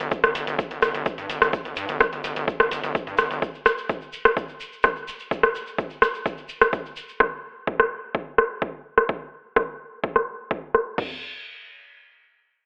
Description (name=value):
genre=melodic techno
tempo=127 BPM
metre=4/4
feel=straight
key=unclear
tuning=A4 = 444 Hz
part: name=gritty driven synth bass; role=bass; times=0.0-3.4 s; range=G1 to G2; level=-32 LUFS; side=equal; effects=distortion, sidechain pumping
part: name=punchy analog drum machine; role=drums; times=0.0-10.8 s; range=hi-hat, rim click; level=-23 LUFS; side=equal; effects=overdrive, low-pass filter on hats, low-pass filter on cymbals, low-pass filter on snare, low-pass filter on room
part: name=tube shaker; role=percussion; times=0.0-7.2 s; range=none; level=-42 LUFS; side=equal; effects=none
part: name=punchy analog drum machine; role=drums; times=0.1-11.1 s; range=crash cymbal, kick drum, toms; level=-30 LUFS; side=equal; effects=overdrive
room=light reverb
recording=telephone sound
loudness=-24 LUFS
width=mono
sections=0.0-11.0 A section; 11.0-12.7 B section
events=filter sweep on drum 0.0-11.0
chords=none